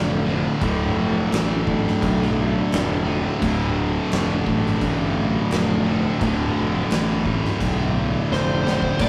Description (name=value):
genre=stoner and doom metal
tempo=86 BPM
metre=4/4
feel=straight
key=D dorian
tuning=A4 = 439 Hz
part: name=percussive tonewheel organ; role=sustained chords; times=0.0-9.1 s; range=B2 to E4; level=-38 LUFS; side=equal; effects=none
part: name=heavy high-gain guitar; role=riff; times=0.0-9.1 s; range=D2 to D3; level=-30 LUFS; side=equal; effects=distortion
part: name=thick fuzz guitar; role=riff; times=0.0-9.1 s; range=D2 to D3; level=-26 LUFS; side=equal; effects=distortion
part: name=thick fuzz guitar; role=riff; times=0.0-9.1 s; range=D2 to D3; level=-31 LUFS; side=equal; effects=none
part: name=fuzz fingered electric bass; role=bass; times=0.0-9.1 s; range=D1 to B1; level=-27 LUFS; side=equal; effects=overdrive
part: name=oversized low-tuned drum kit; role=drums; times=0.6-9.1 s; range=crash cymbal, kick drum, snare drum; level=-30 LUFS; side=equal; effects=none
part: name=fuzz lead guitar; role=melody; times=8.3-9.1 s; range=C5 to D5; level=-27 LUFS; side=equal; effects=distortion
room=moderate stone room reverb, RT60 1.2 s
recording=rough rehearsal-room recording, tube saturation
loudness=-21 LUFS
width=mono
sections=0.0-9.0 A section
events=drum fill 8.3-9.0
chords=0.0 Dm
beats=| 0.62 1.32 2.02 2.71 | 3.41 4.11 4.81 5.51 | 6.20 6.90 7.60 8.30 | 9.00